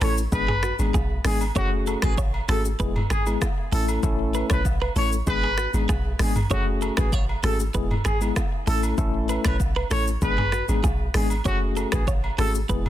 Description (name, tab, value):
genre	afrobeats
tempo	97 BPM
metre	4/4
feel	straight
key	F# minor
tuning	A4 = 440 Hz
part	warm trumpet	melody	0.0-12.5 s	F#4 to C#5	-30 LUFS	equal	tape echo
part	tine electric piano	accompaniment	0.0-12.9 s	G#3 to A4	-29 LUFS	left 4 dB	fast stereo tremolo
part	direct-recorded clean electric guitar	riff	0.0-12.8 s	F#4 to C#5	-33 LUFS	right 7 dB	tremolo, tape echo
part	deep log drum bass	bass	0.0-12.9 s	E1 to B1	-25 LUFS	equal	none
part	afro-pop drum kit	drums	0.0-12.9 s	finger snaps, hi-hat, kick drum, rim click, shaker, toms	-26 LUFS	equal	soft clipping on snare
part	agogo bells and woodblock	percussion	0.5-12.9 s	none	-36 LUFS	right 2 dB	none
room	digital ambience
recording	dense, heavily limited modern master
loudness	-21 LUFS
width	side -12 dB against mid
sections	0.0-12.9 A section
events	none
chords	0.3 G#dim; 1.6 F#madd9; 2.8 E; 3.7 A; 5.3 G#dim; 6.5 F#madd9; 7.7 E; 8.7 A; 10.2 G#dim; 11.5 F#madd9